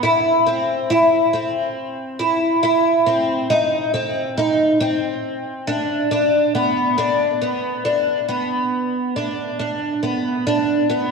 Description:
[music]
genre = dream pop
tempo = 69 BPM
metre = 4/4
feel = straight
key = unclear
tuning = A4 = 442 Hz
[part]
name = picked twelve-string acoustic guitar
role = solo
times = 0.0-11.1 s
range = B3 to E4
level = -17 LUFS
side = equal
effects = lush chorus, tape echo
[sound]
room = wet scoring stage reverb, RT60 1.6 s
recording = worn, warbling old tape, cassette tape, warbly pitch drift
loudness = -17 LUFS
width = side -4 dB against mid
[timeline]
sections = 0.0-7.0 A section; 7.0-11.1 B section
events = none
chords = none

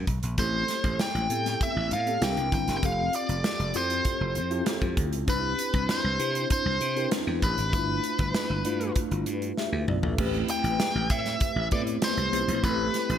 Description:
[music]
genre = polished 1980s jazz-funk pop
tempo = 98 BPM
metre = 4/4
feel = straight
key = unclear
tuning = A4 = 444 Hz
[part]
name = slap bass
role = bass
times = 0.0-13.2 s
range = F1 to C3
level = -30 LUFS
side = equal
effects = none
[part]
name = modern studio drum kit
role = drums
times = 0.1-13.2 s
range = crash cymbal, hi-hat, kick drum, snare drum, toms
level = -30 LUFS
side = equal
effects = gated reverb
[part]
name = nasal lead guitar with a parked wah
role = melody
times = 0.4-13.2 s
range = B4 to G5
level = -29 LUFS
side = equal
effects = overdrive
[part]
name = mellow tine electric piano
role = accompaniment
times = 0.4-13.2 s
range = A3 to E5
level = -31 LUFS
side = left 1 dB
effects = medium stereo tremolo, analog chorus
[sound]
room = moderate plate reverb, RT60 1.9 s, small room ambience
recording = bright 1980s-style digital production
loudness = -24 LUFS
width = side -9 dB against mid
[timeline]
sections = 0.0-10.2 A section; 10.2-13.2 B section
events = drum fill 9.6-10.2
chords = 0.4 Am9; 2.2 C7; 2.8 Fmaj7; 5.3 Cmaj7; 7.7 G13; 10.2 Am9

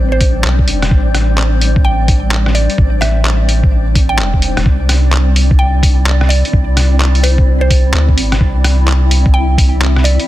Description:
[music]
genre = future garage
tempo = 128 BPM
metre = 4/4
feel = swing 63% on 16ths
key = unclear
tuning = A4 = 440 Hz
[part]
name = mallet-like synth pluck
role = melody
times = 0.0-10.3 s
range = C5 to G5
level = -21 LUFS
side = right 2 dB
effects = chorus, tape echo
[part]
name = granular cloud pad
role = sustained chords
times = 0.0-10.3 s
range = G3 to E5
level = -21 LUFS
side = left 1 dB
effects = built-in reverb, sidechain pumping
[part]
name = warm sub bass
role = bass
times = 0.0-10.2 s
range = E1 to D2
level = -12 LUFS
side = equal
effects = sidechain pumping
[part]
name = flickering grainy texture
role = texture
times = 0.0-10.3 s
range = D4 to D5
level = -27 LUFS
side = left 2 dB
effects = built-in reverb
[part]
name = electronic kick drum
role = drums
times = 0.2-9.7 s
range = none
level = -12 LUFS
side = equal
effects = none
[part]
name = lo-fi sampler-style drum kit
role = drums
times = 0.2-10.3 s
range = handclaps, hi-hat, rim click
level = -18 LUFS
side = equal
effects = soft clipping on snare
[sound]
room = digital ambience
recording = dense, heavily limited modern master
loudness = -9 LUFS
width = side -15 dB against mid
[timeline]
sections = 0.0-10.3 A section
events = none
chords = 0.0 Am11; 4.7 Cadd9

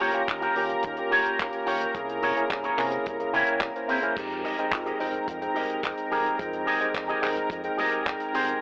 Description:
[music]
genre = nu-disco, nu disco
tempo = 108 BPM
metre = 4/4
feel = straight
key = F minor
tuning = A4 = 440 Hz
[part]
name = tine electric piano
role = accompaniment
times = 0.0-8.6 s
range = Ab3 to G5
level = -29 LUFS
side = equal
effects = medium stereo tremolo, sidechain pumping, analog delay
[part]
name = lush unison pad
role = sustained chords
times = 0.0-8.6 s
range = Bb4 to Bb5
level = -32 LUFS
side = equal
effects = chorus, sidechain pumping
[part]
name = electric guitar with an envelope filter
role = riff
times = 0.0-8.6 s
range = E4 to Eb5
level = -26 LUFS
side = equal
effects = analog chorus, low-pass filter, analog delay
[part]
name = chorused synth bass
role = bass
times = 0.0-8.5 s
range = Eb1 to C3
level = -40 LUFS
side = equal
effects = sidechain pumping
[part]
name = damped 70s drum kit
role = drums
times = 0.0-8.6 s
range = crash cymbal, handclaps, hi-hat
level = -33 LUFS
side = equal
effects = none
[part]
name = kick drum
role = drums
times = 0.3-8.2 s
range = none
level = -39 LUFS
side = equal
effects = none
[sound]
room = light reverb, small room ambience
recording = dry, gritty hardware recording, telephone sound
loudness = -24 LUFS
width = side -40 dB against mid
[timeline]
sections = 0.0-8.6 A section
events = none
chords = 0.0 Eb9; 1.9 C7b9b13; 4.2 Fm9

